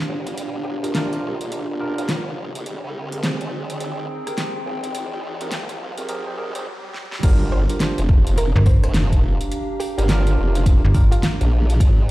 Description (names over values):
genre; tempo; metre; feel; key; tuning
glitch hop; 105 BPM; 4/4; swing 62% on 16ths; G phrygian; A4 = 440 Hz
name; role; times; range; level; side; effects
riser and swell; sound effects; 0.1-7.2 s; none; -37 LUFS; equal; none
warbly tape-like pad; texture; 0.0-12.1 s; C4 to Bb5; -31 LUFS; equal; chorus, built-in reverb, sidechain pumping
formant-sweep wobble bass; bass; 0.1-12.1 s; F1 to C2; -22 LUFS; equal; chorus, overdrive, high-pass filter
pop drum kit; drums; 0.3-11.9 s; crash cymbal, hi-hat, rim click, snare drum; -27 LUFS; equal; none
woody wave-folded pluck; melody; 0.6-2.2, 7.5-11.3 s; F4 to C5; -32 LUFS; right 1 dB; analog chorus, tape echo
bright tine electric piano; stabs; 0.8-11.2 s; C4 to C5; -30 LUFS; right 2 dB; sidechain pumping, low-pass filter, tape echo
electronic kick drum; drums; 7.2-11.9 s; none; -16 LUFS; equal; none
slap-like FM bass; bass; 8.6-11.1 s; G1; -15 LUFS; equal; none
room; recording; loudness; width
digital ambience; played on a big sound system in a bare room, large studio reverb, vinyl crackle, high-pass filter; -18 LUFS; side -18 dB against mid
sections
0.0-7.2 A section; 7.2-12.1 B section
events
build-up 0.0-7.2; filter sweep 0.0-7.2; riser 0.1-7.2; swell 6.1-7.2; drum fill 6.9; drop 7.2-12.1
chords
0.0 Gm7; 2.7 Abmaj9; 7.2 Gm7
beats
| 0.38 0.95 1.52 2.09 | 2.66 3.23 3.81 4.38 | 4.95 5.52 6.09 6.66 | 7.23 7.80 8.38 8.95 | 9.52 10.09 10.66 11.23 | 11.80